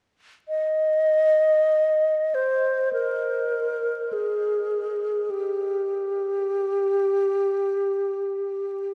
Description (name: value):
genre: classical, free, expressive piece for unaccompanied alto flute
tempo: free time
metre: none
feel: none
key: unclear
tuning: A4 = 441 Hz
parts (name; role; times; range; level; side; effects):
- bright wooden-headed alto flute; solo; 0.5-8.9 s; G4 to Eb5; -24 LUFS; equal; none
room: wet cathedral reverb, RT60 7.0 s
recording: dark, warm production, vinyl crackle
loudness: -24 LUFS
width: mono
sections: 0.5-8.9 A section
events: none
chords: none